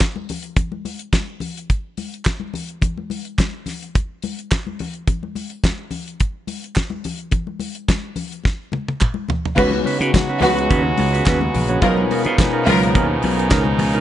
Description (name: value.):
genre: disco.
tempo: 107 BPM.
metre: 4/4.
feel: straight.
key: unclear.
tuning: A4 = 440 Hz.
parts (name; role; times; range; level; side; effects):
damped 70s drum kit; drums; 0.0-14.0 s; crash cymbal, hi-hat, kick drum, snare drum, toms; -20 LUFS; equal; none.
group handclap; percussion; 0.0-13.6 s; none; -31 LUFS; right 3 dB; none.
congas; percussion; 0.2-13.9 s; none; -29 LUFS; left 6 dB; none.
warm studio string section; second line; 9.6-12.9 s; F#3 to Cb5; -20 LUFS; right 1 dB; none.
mellow electric guitar; accompaniment; 9.6-14.0 s; Db4 to Db5; -24 LUFS; right 5 dB; none.
tine electric piano; accompaniment; 9.6-14.0 s; B2 to Db5; -25 LUFS; left 4 dB; slow stereo tremolo.
muted French horn section; sustained chords; 9.6-14.0 s; Db3 to Gb4; -22 LUFS; right 1 dB; none.
slap bass; bass; 9.6-14.0 s; Bb1 to Db3; -20 LUFS; equal; none.
room: small room reverb.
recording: nothing above 10.4 kHz.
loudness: -17 LUFS.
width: side -12 dB against mid.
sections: 0.0-9.6 A section; 9.6-14.0 B section.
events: drum fill 8.4-9.6.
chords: 0.0 N.C.; 9.6 Db7sus4; 11.8 Bmaj9#11.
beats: 0.01 | 0.57 1.13 1.70 2.26 | 2.82 3.38 3.95 4.51 | 5.07 5.63 6.20 6.76 | 7.32 7.89 8.45 9.01 | 9.57 10.13 10.70 11.26 | 11.82 12.38 12.94 13.50.